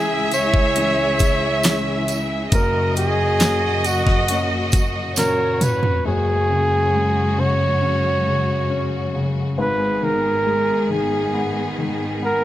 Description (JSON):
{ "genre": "pop ballad", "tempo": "68 BPM", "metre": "4/4", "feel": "straight", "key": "F# mixolydian", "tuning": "A4 = 438 Hz", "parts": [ { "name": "warm flugelhorn", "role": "melody", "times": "0.0-12.4 s", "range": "F#4 to C#5", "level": "-21 LUFS", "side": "right 1 dB", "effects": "none" }, { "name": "warm studio violin section", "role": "second line", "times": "0.0-6.1 s", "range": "C#5 to E5", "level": "-24 LUFS", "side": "right 1 dB", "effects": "digital delay" }, { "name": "warm baby grand piano", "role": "accompaniment", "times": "0.0-12.4 s", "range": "F#1 to C#4", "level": "-23 LUFS", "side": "left 2 dB", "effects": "none" }, { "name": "rich studio string section", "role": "sustained chords", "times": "0.0-12.4 s", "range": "C#2 to G#4", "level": "-25 LUFS", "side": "equal", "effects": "none" }, { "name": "pop drum kit", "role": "drums", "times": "0.3-6.0 s", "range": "hi-hat, kick drum, snare drum, toms", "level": "-19 LUFS", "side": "equal", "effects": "none" }, { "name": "tambourine", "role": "percussion", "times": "0.3-5.8 s", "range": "none", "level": "-30 LUFS", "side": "right 7 dB", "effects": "none" } ], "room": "little or no reverb", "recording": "none", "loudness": "-17 LUFS", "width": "side -13 dB against mid", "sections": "0.0-6.1 A section; 6.1-12.4 A section", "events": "drum fill 5.2-6.1", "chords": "0.0 C#m; 2.5 F#; 6.1 F#sus2; 9.6 G#m", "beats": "0.76 1.64 | 2.52 3.40 4.29 5.17 | 6.05 6.93 7.82 8.70 | 9.58 10.46 11.35 12.23" }